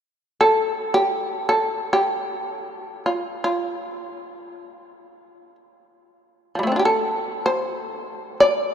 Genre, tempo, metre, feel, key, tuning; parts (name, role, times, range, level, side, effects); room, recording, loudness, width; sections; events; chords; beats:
japanese traditional; free time; G suspended pentatonic; A4 = 440 Hz
shamisen; melody; 0.4-8.7 s; F3 to D5; -20 LUFS; equal
wet cathedral reverb, RT60 5.1 s; dark, warm production; -20 LUFS; side -8 dB against mid
0.0-8.7 A section
free time